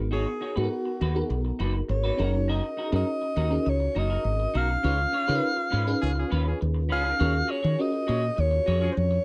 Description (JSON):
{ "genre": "pop", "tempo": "102 BPM", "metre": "4/4", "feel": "straight", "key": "F# major", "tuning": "A4 = 442 Hz", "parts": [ { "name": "bell-like FM electric piano", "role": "accompaniment", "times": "0.0-9.2 s", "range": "B3 to B4", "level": "-34 LUFS", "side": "equal", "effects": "phaser, ensemble chorus" }, { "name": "woody fretless electric bass", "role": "bass", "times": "0.0-9.2 s", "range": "F#1 to D#3", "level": "-28 LUFS", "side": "equal", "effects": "subtle chorus" }, { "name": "breathy alto saxophone", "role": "melody", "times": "0.1-9.2 s", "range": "F#4 to E#5", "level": "-31 LUFS", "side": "equal", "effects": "none" }, { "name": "semi-hollow electric guitar", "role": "riff", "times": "0.1-9.2 s", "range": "C#4 to C#5", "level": "-37 LUFS", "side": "equal", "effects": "lush chorus" }, { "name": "warm horn section", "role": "second line", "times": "6.0-8.9 s", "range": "C#4 to G#4", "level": "-36 LUFS", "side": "equal", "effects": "none" } ], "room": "light reverb", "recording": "dry, close 1970s-style studio recording", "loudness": "-26 LUFS", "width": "mono", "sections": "0.0-7.2 A section; 7.2-9.2 B section", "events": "band accent 4.8-7.2", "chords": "0.0 G#m7; 2.2 F#6; 4.8 C#7; 7.2 D#m11" }